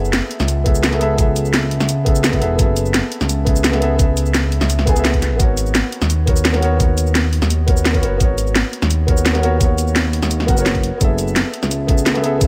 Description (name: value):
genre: liquid drum and bass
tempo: 171 BPM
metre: 4/4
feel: straight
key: unclear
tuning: A4 = 441 Hz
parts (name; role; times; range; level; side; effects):
- felt-muted upright piano; accompaniment; 0.0-12.5 s; B3 to G#5; -24 LUFS; equal; tape echo
- smooth synth bass; bass; 0.0-12.5 s; E1 to D#2; -21 LUFS; equal; none
- drum and bass drum kit; drums; 0.0-12.5 s; hi-hat, shaker, snare drum; -22 LUFS; equal; none
- electronic kick drum; drums; 0.7-12.5 s; none; -19 LUFS; equal; none
room: digital ambience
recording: none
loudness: -16 LUFS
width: mono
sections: 0.0-12.5 A section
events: none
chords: 0.0 F#m11; 5.4 G#m11; 11.0 F#m11